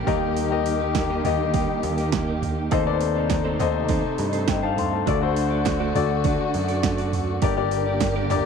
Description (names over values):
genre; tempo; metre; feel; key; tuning
piano-driven pop; 102 BPM; 4/4; straight; unclear; A4 = 438 Hz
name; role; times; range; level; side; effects
warm concert grand piano; accompaniment; 0.0-8.5 s; G2 to C6; -25 LUFS; left 12 dB; none
warm studio string section; sustained chords; 0.0-8.5 s; C3 to G4; -30 LUFS; equal; none
direct-recorded clean electric guitar; riff; 0.0-8.5 s; C3 to D5; -31 LUFS; right 14 dB; none
picked electric bass; bass; 0.0-8.5 s; G1 to G2; -27 LUFS; right 2 dB; none
deep house drum kit; drums; 0.1-8.4 s; hi-hat, kick drum, snare drum, toms; -27 LUFS; right 5 dB; overdrive
group handclap; percussion; 1.0-8.4 s; none; -40 LUFS; right 14 dB; none
room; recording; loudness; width
light reverb, digital ambience; 1960s-style stereo with parts hard left and right; -20 LUFS; side -6 dB against mid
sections
0.0-8.5 A section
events
none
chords
0.1 Eb; 2.7 Adim/Eb; 5.1 D; 7.4 Gm